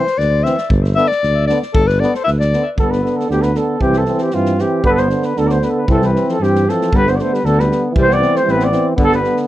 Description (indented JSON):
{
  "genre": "balkan folk, Balkan brass band",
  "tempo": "116 BPM",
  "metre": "2/4",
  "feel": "straight",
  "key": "G mixolydian",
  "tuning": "A4 = 439 Hz",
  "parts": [
    { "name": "mellow alto saxophone", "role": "second line", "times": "0.0-2.8, 5.9-9.3 s", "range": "D3 to E5", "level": "-19 LUFS", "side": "left 4 dB", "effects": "tape echo" },
    { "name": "warm euphonium", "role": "accompaniment", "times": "0.0-9.5 s", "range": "D3 to E3", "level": "-22 LUFS", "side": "right 5 dB", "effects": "none" },
    { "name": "natural country drum kit", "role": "percussion", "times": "0.1-9.4 s", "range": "kick drum, snare drum", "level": "-20 LUFS", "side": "equal", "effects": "none" },
    { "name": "dark tuba", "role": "bass", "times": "0.2-9.3 s", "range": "G1 to G2", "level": "-18 LUFS", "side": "equal", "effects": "none" },
    { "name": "clear trombone", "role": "accompaniment", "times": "0.4-9.5 s", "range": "B3 to C4", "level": "-20 LUFS", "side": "left 3 dB", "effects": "none" },
    { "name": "dark cornet", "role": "melody", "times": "2.8-9.4 s", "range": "F4 to D5", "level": "-17 LUFS", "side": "right 1 dB", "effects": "none" }
  ],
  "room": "little or no reverb",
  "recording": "dry, close 1970s-style studio recording",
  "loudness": "-13 LUFS",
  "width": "side -14 dB against mid",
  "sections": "0.0-2.8 A section; 2.8-9.5 B section",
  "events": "alto saxophone solo 0.0-2.8",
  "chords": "0.0 C; 0.7 G; 3.8 C; 4.8 G; 5.9 C; 6.9 G; 7.9 C; 9.0 G"
}